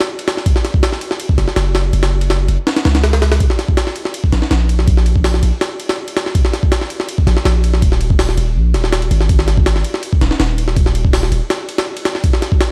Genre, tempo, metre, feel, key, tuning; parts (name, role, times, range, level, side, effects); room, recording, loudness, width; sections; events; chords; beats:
drum and bass, jungle; 163 BPM; 4/4; straight; A4 = 440 Hz
jungle sampler-style drum kit; drums; 0.0-12.7 s; hi-hat, kick drum, ride cymbal, snare drum; -17 LUFS; equal
long sustained 808-style bass; bass; 1.4-11.4 s; Eb1 to Db2; -17 LUFS; equal
little or no reverb; vinyl crackle; -15 LUFS; mono
0.0-12.7 A section
0.09 | 0.46 0.83 1.20 1.56 | 1.93 2.30 2.67 3.04 | 3.40 3.77 4.14 4.51 | 4.88 5.25 5.61 5.98 | 6.35 6.72 7.09 7.45 | 7.82 8.19 8.56 8.93 | 9.29 9.66 10.03 10.40 | 10.77 11.13 11.50 11.87 | 12.24 12.61